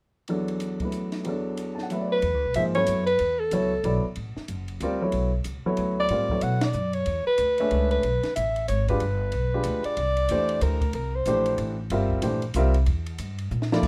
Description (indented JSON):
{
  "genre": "modal jazz",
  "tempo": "186 BPM",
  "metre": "3/4",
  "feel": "swing 62% on 8ths",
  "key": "E mixolydian, C mixolydian from 10.0 s",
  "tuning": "A4 = 439 Hz",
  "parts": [
    { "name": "warm grand piano", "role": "accompaniment", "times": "0.3-13.8 s", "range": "E2 to A5", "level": "-29 LUFS", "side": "equal", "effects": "none" },
    { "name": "compact cocktail drum kit", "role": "drums", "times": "0.3-13.9 s", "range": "crash cymbal, hi-hat, kick drum, ride cymbal, snare drum", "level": "-37 LUFS", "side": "equal", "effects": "none" },
    { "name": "breathy soprano saxophone", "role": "melody", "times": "2.1-11.6, 13.7-13.9 s", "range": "A4 to F#5", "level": "-27 LUFS", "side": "equal", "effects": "none" },
    { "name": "upright bass", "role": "bass", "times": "2.2-13.9 s", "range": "F#1 to B2", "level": "-30 LUFS", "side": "equal", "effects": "none" }
  ],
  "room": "moderate studio reverb, RT60 0.5 s",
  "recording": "none",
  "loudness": "-25 LUFS",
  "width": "mono",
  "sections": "0.3-2.2 A section; 2.2-10.0 B section; 10.0-13.9 C section",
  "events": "band accent 6.6; drum fill 13.5-13.8",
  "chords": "0.3 E9sus4; 9.0 G7b9; 10.0 C9",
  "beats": "| 0.29 0.61 0.93 | 1.26 1.58 1.91 | 2.23 2.55 2.88 | 3.20 3.52 3.85 | 4.17 4.49 4.81 | 5.14 5.46 5.78 | 6.10 6.43 6.75 | 7.07 7.39 7.72 | 8.04 8.36 8.68 | 9.01 9.33 9.65 | 9.97 10.29 10.62 | 10.94 11.26 11.58 | 11.90 12.22 12.55 | 12.87 13.19 13.51 | 13.83"
}